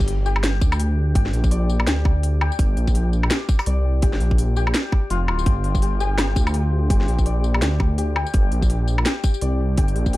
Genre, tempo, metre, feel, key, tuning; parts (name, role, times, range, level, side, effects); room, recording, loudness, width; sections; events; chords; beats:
half-time drum and bass; 167 BPM; 4/4; swing 59% on 16ths, half-time; G minor; A4 = 440 Hz
santur; arpeggios; 0.0-10.2 s; F4 to D5; -29 LUFS; left 6 dB; tape echo
dark detuned saw bass; bass; 0.0-10.2 s; D1 to D2; -20 LUFS; equal; tube saturation
drum and bass drum kit; drums; 0.0-10.2 s; hi-hat, snare drum, tambourine, woodblock; -25 LUFS; equal; small room ambience
electronic kick drum; drums; 0.0-10.1 s; -19 LUFS; equal; small room ambience
digital ambience; dry, gritty hardware recording; -18 LUFS; side -17 dB against mid
0.0-10.2 A section
0.0 Gm
0.08 0.43 0.79 | 1.15 1.51 1.87 2.23 | 2.59 2.95 3.31 3.67 | 4.03 4.39 4.75 5.11 | 5.46 5.82 6.18 6.54 | 6.90 7.26 7.62 7.98 | 8.34 8.70 9.06 9.42 | 9.78 10.14